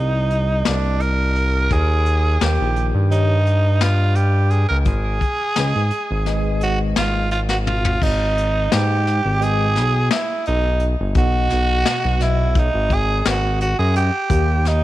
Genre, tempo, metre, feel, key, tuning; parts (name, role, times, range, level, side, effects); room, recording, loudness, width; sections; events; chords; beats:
progressive instrumental, band music in an uneven meter; 172 BPM (eighths); 9/8; straight; A4 = 440 Hz
breathy tenor saxophone; melody; 0.0-14.8 s; D4 to A#4; -21 LUFS; right 2 dB; tape echo
smooth synth bass; bass; 0.0-14.8 s; G1 to G#2; -18 LUFS; equal
vintage brush drum kit; drums; 0.3-14.8 s; crash cymbal, hi-hat, kick drum, snare drum, toms; -23 LUFS; left 3 dB
mellow tine electric piano; accompaniment; 2.4-14.5 s; B2 to D#5; -27 LUFS; left 1 dB; medium stereo tremolo
light reverb, small room reverb; 1960s-style stereo; -16 LUFS; side -15 dB against mid
0.0-8.0 A section; 8.0-14.8 B section
drum fill 7.5-8.0
0.0 Cm7; 1.7 D#; 4.9 G#m; 11.2 B; 14.3 D#
0.32 0.67 1.02 1.37 | 1.72 2.07 2.42 2.77 3.12 3.48 3.83 4.18 4.53 | 4.88 5.23 5.58 5.93 6.28 6.62 6.97 7.32 7.67 | 8.02 8.37 8.72 9.07 9.42 9.77 10.12 10.47 10.81 | 11.16 11.51 11.86 12.21 12.56 12.91 13.26 13.61 13.96 | 14.31 14.66